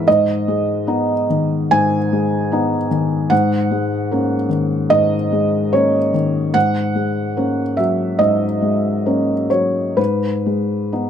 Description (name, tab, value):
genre	neoclassical minimalist piano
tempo	63-76 BPM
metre	4/4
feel	rubato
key	G# minor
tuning	A4 = 440 Hz
part	felt-muted upright piano	solo	0.0-11.1 s	G#2 to G#5	-15 LUFS	equal	none
room	little or no reverb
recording	close, detailed microphones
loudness	-15 LUFS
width	side -8 dB against mid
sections	0.0-11.1 A section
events	none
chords	0.1 G#m; 3.3 D#m7/G#; 6.5 F#add9/G#; 10.0 Emaj7/G# (rootless)